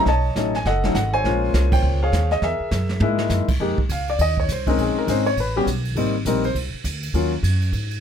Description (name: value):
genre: jazz piano trio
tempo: 203 BPM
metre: 4/4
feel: swing 62% on 8ths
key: F minor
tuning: A4 = 443 Hz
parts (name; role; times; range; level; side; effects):
- warm grand piano; melody; 0.0-7.3 s; F#3 to A5; -21 LUFS; left 2 dB; none
- upright bass; bass; 0.0-8.0 s; F#1 to G#2; -22 LUFS; equal; none
- jazz brush drum kit; drums; 0.1-8.0 s; brushed snare drum, crash cymbal, hi-hat, kick drum, ride cymbal, snare drum, toms; -27 LUFS; right 2 dB; none
room: little or no reverb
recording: close, detailed microphones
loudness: -18 LUFS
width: side -8 dB against mid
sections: 0.0-3.6 A section; 3.6-8.0 B section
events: band accent 1.7; drum fill 3.0; grand piano solo 3.6-8.0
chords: 0.1 B9; 1.2 Bbm9; 2.4 Emaj9#11; 3.6 Fm11; 4.8 Bbm11; 5.4 A7sus2; 6.0 Abmaj9; 7.1 Ebm7